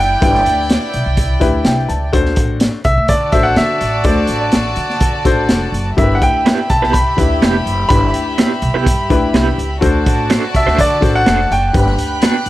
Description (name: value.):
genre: uptempo 1960s-style soul.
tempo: 125 BPM.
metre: 4/4.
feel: straight.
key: G major.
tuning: A4 = 440 Hz.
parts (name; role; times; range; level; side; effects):
clear baby grand piano; melody; 0.0-12.5 s; D5 to B5; -17 LUFS; equal; plate reverb, analog delay.
warm studio violin section; second line; 0.0-12.5 s; E4 to F#6; -21 LUFS; right 1 dB; plate reverb.
upright bass; bass; 0.0-12.5 s; F1 to D3; -18 LUFS; equal; none.
warm grand piano; accompaniment; 0.2-12.4 s; D4 to A5; -19 LUFS; left 5 dB; plate reverb.
crunchy breakbeat drum kit; drums; 0.2-12.5 s; hi-hat, kick drum, snare drum; -16 LUFS; equal; none.
electric guitar through a small old amp; stabs; 6.5-12.4 s; A3 to C5; -20 LUFS; right 5 dB; tremolo, plate reverb.
room: light reverb.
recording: none.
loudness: -12 LUFS.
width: side -15 dB against mid.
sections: 0.0-12.5 A section.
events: grand piano fill 1.2-2.1.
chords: 0.0 G6; 2.1 D7; 6.0 G6; 9.8 D7; 11.7 Gmaj7.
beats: | 0.22 0.70 1.18 1.66 | 2.14 2.62 3.10 3.58 | 4.06 4.54 5.02 5.50 | 5.98 6.46 6.94 7.42 | 7.90 8.38 8.86 9.34 | 9.82 10.30 10.78 11.26 | 11.74 12.22.